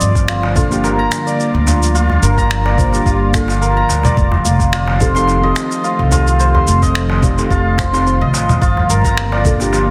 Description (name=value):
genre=organic downtempo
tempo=108 BPM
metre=4/4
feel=swing 54% on 16ths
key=G minor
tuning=A4 = 441 Hz
part: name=ethereal airy pad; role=sustained chords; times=0.0-9.9 s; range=D3 to F4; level=-25 LUFS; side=equal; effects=ensemble chorus, built-in reverb, sidechain pumping
part: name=santur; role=arpeggios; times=0.0-9.9 s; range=F4 to C6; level=-20 LUFS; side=equal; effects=tape echo
part: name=upright bass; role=bass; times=0.0-9.9 s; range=F1 to D2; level=-19 LUFS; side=equal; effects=sidechain pumping
part: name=electronic shaker, finger snaps and congas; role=drums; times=0.0-9.9 s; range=none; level=-23 LUFS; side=equal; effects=soft clipping on snare
part: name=electronic kick drum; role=drums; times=0.2-9.6 s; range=none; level=-20 LUFS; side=equal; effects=overdrive
part: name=darbuka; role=percussion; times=0.2-9.8 s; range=none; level=-27 LUFS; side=equal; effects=none
part: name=muted felt-like synth keys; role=accompaniment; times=0.6-9.9 s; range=Bb3 to D5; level=-23 LUFS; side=equal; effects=chorus, phaser, sidechain pumping, tape echo
room=light reverb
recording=dense, heavily limited modern master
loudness=-14 LUFS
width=mono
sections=0.0-9.9 A section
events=none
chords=0.0 Gm7; 4.2 F7; 8.6 Gm7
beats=0.28 0.84 1.40 | 1.95 2.51 3.06 3.62 | 4.17 4.73 5.28 5.84 | 6.39 6.95 7.51 8.06 | 8.62 9.17 9.73